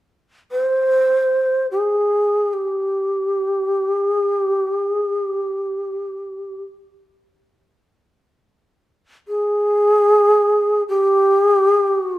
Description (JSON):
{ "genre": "japanese traditional, Japanese chamber music", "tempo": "free time", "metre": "none", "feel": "none", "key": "unclear", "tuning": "A4 = 439 Hz", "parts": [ { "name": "breathy mellow long shakuhachi", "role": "solo", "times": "0.5-12.2 s", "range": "G4 to C5", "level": "-16 LUFS", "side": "equal", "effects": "none" } ], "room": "light reverb", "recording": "none", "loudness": "-16 LUFS", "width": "side -16 dB against mid", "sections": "0.0-8.7 A section; 8.7-12.2 B section", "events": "none", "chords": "none" }